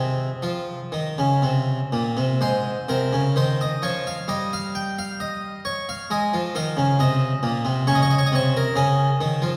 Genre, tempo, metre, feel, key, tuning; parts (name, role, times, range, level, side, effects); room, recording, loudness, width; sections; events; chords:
classical, baroque-style suite movement for harpsichord; 60-69 BPM; 4/4; rubato; F minor; A4 = 440 Hz
harpsichord; solo; 0.0-9.6 s; Ab2 to G5; -23 LUFS; equal
wet church reverb, RT60 2.7 s; recorded in a church or concert hall; -23 LUFS; mono
0.0-2.4 A section; 2.4-9.6 A section
0.0 Ab; 2.4 Fm/Ab; 4.3 N.C.; 6.1 Ab; 7.9 Db